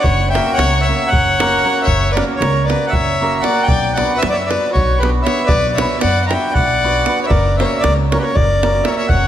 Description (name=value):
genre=balkan folk, Balkan wedding band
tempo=232 BPM (eighths)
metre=7/8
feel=straight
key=F# phrygian dominant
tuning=A4 = 440 Hz
part: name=accordion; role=melody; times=0.0-9.3 s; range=B4 to A#5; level=-17 LUFS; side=equal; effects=none
part: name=rich violin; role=second line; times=0.0-9.3 s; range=F#4 to F#5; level=-21 LUFS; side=left 5 dB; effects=none
part: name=davul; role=percussion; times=0.0-9.3 s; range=none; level=-20 LUFS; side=right 1 dB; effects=none
part: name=upright bass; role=bass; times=0.1-9.3 s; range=F#1 to F#2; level=-19 LUFS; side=equal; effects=none
part: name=hammered dulcimer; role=accompaniment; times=0.3-9.1 s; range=A#3 to B4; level=-22 LUFS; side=right 2 dB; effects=none
room=moderate concert hall reverb, RT60 1.7 s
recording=none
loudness=-13 LUFS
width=side -11 dB against mid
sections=0.0-9.3 A section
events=none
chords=0.0 F#; 3.7 Bm; 7.3 F#